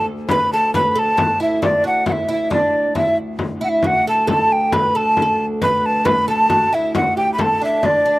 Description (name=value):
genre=medieval dance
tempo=90 BPM (dotted quarters)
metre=6/8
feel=straight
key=D major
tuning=A4 = 440 Hz
part: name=breathy mellow tenor recorder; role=melody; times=0.0-8.2 s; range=D5 to B5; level=-16 LUFS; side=equal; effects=none
part: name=oud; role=second line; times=0.0-8.2 s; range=D4 to B4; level=-22 LUFS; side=right 2 dB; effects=slapback echo
part: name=warm viola da gamba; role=drone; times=0.0-8.2 s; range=D2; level=-28 LUFS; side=left 1 dB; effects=stereo widening
part: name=frame drum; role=percussion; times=0.3-8.2 s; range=none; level=-23 LUFS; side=left 3 dB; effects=none
room=little or no reverb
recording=recorded outdoors, with no room sound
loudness=-15 LUFS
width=side -18 dB against mid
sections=0.0-8.2 A section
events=none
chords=none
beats=| 0.30 0.97 | 1.63 2.30 | 2.96 3.63 | 4.29 4.96 | 5.62 6.29 | 6.95 7.61